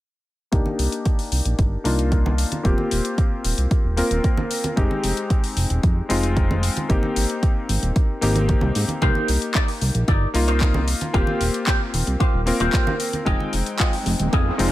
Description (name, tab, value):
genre	nu-disco, nu disco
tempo	113 BPM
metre	4/4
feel	straight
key	C minor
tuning	A4 = 440 Hz
part	warm electric grand piano	accompaniment	0.5-14.7 s	Ab3 to G5	-25 LUFS	left 2 dB	low-pass filter, ping-pong delay
part	fat analog bass	bass	0.5-14.7 s	Eb1 to Ab2	-22 LUFS	equal	none
part	electronic kick drum	drums	0.5-14.4 s	none	-20 LUFS	equal	overdrive
part	house drum kit	drums	0.5-14.7 s	handclaps, hi-hat	-28 LUFS	left 2 dB	overdrive
part	congas	percussion	0.7-13.5 s	none	-29 LUFS	right 2 dB	none
part	electric guitar with an envelope filter	riff	9.0-14.5 s	Eb4 to Eb5	-27 LUFS	left 1 dB	wide subtle chorus, ping-pong delay
part	riser	sound effects	13.7-14.7 s	none	-30 LUFS	right 2 dB	none
room	little or no reverb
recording	none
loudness	-18 LUFS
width	side -15 dB against mid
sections	0.5-14.7 A section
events	filter sweep on electric grand piano 0.5-14.7; riser 13.7-14.7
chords	0.5 Cm7; 2.6 Eb69; 4.8 Fm7; 6.9 Abmaj7; 9.0 Cm7; 11.1 Eb69; 13.3 Fm7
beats	| 0.52 1.05 1.59 2.12 | 2.65 3.18 3.71 4.24 | 4.77 5.30 5.83 6.37 | 6.90 7.43 7.96 8.49 | 9.02 9.55 10.08 10.61 | 11.14 11.68 12.21 12.74 | 13.27 13.80 14.33